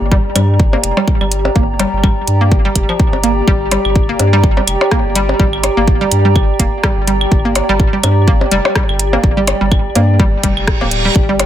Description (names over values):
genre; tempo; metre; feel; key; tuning
minimal techno; 125 BPM; 4/4; swing 56% on 16ths; G minor; A4 = 441 Hz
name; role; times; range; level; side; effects
saturated sub bass; bass; 0.0-11.5 s; D1 to G2; -16 LUFS; equal; sidechain pumping
warbly tape-like pad; texture; 0.0-11.5 s; G4 to Bb5; -18 LUFS; equal; chorus, built-in reverb, sidechain pumping
hollow square pluck; riff; 0.1-11.3 s; F3 to Bb3; -18 LUFS; right 1 dB; chorus, sidechain pumping, tape echo
electronic kick drum; drums; 0.1-11.3 s; none; -13 LUFS; equal; none
garage drum kit; drums; 0.4-11.5 s; hi-hat, rim click; -17 LUFS; equal; none
percussion blips and claves; percussion; 0.4-11.5 s; none; -19 LUFS; left 1 dB; tape echo
reverse cymbal; sound effects; 10.5-11.2 s; none; -20 LUFS; right 6 dB; none
room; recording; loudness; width
light reverb; none; -10 LUFS; side -11 dB against mid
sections
0.0-11.5 A section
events
reverse cymbal 10.5-11.2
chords
0.0 Gm